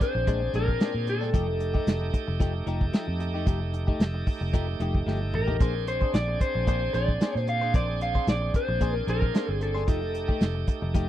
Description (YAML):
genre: straight-eighth soul blues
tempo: 112 BPM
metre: 4/4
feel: swing 54% on 16ths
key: F mixolydian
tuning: A4 = 440 Hz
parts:
  - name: electric guitar through a small old amp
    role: melody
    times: 0.0-11.1 s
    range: A4 to F5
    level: -30 LUFS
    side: left 1 dB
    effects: none
  - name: bright tonewheel organ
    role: accompaniment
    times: 0.0-11.1 s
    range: A3 to Ab4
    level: -35 LUFS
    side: right 5 dB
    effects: slow rotary speaker, overdrive
  - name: direct-recorded clean electric guitar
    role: stabs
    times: 0.0-11.1 s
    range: Bb2 to C5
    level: -34 LUFS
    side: left 5 dB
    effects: wide subtle chorus
  - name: warm soul drum kit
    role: drums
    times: 0.0-11.1 s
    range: hi-hat, kick drum, snare drum, toms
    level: -25 LUFS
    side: equal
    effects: none
  - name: vintage muted fingered electric bass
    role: bass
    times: 0.1-11.1 s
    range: F1 to Bb2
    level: -29 LUFS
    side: equal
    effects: none
room: little or no reverb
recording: dry, close 1970s-style studio recording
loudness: -24 LUFS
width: side -12 dB against mid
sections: 0.0-11.1 A section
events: drum fill 5.1-5.6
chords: 0.0 Bb9; 1.3 F9; 5.6 Bb9; 9.9 F9